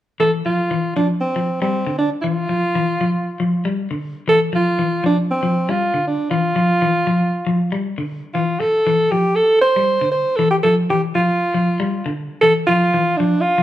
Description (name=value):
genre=afrobeat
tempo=118 BPM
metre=4/4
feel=swing 54% on 16ths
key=D minor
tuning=A4 = 440 Hz
part: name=breathy alto saxophone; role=melody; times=0.2-13.6 s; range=C4 to C5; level=-17 LUFS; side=right 1 dB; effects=none
part: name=clean electric guitar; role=arpeggios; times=0.2-13.6 s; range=D3 to G3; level=-20 LUFS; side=left 2 dB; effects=spring reverb
room=wet large studio reverb, RT60 0.9 s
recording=band playing live in one room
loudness=-16 LUFS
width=side -13 dB against mid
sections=0.2-13.6 A section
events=none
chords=0.2 Dmadd9